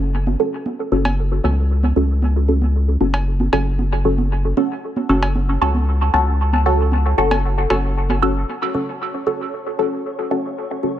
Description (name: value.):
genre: dub techno.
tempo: 115 BPM.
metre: 4/4.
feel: straight.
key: F# minor.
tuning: A4 = 439 Hz.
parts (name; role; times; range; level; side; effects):
filtered dub chord stab; stabs; 0.0-11.0 s; C#4 to A4; -20 LUFS; equal; phaser, dub echo.
round analog bass; bass; 0.0-8.4 s; F#1 to C#2; -18 LUFS; equal; none.
congas and cowbell; percussion; 0.3-8.2 s; none; -26 LUFS; right 2 dB; dub echo.
flickering grainy texture; texture; 8.9-11.0 s; C#5; -34 LUFS; right 1 dB; built-in reverb.
room: light reverb.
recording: echo-heavy mix, nothing above 10.5 kHz.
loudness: -16 LUFS.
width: side -11 dB against mid.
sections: 0.0-8.5 A section; 8.5-11.0 B section.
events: none.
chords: 0.0 F#m.